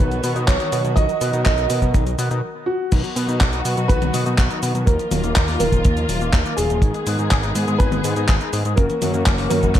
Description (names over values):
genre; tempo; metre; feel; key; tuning
italo disco; 123 BPM; 4/4; straight; unclear; A4 = 440 Hz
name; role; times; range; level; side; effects
dark baby grand piano; melody; 0.0-9.8 s; F#4 to D#5; -25 LUFS; right 1 dB; digital delay
dark studio string section; sustained chords; 0.0-9.8 s; D#3 to Bb4; -26 LUFS; equal; none
electric guitar with an envelope filter; arpeggios; 0.0-9.8 s; Db3 to Ab4; -29 LUFS; left 5 dB; tape echo
fat analog bass; bass; 0.0-9.8 s; Eb1 to B2; -22 LUFS; equal; tube saturation
kick drum; drums; 0.0-9.8 s; none; -17 LUFS; equal; none
gated 80s digital drum machine; drums; 0.1-9.8 s; cabasa, crash cymbal, handclaps, hi-hat, toms; -25 LUFS; left 1 dB; gated reverb, overdrive, high-pass filter on hats, high-pass filter on perc, high-pass filter on snare, high-pass filter on toms, high-pass filter on cymbals, high-pass filter on room
room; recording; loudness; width
light reverb, small room ambience; dark, warm production; -17 LUFS; side -11 dB against mid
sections
0.0-2.9 A section; 2.9-9.8 B section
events
break 2.4-2.9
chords
0.0 B; 4.9 Ebmadd9; 6.8 Abm; 8.8 Gb7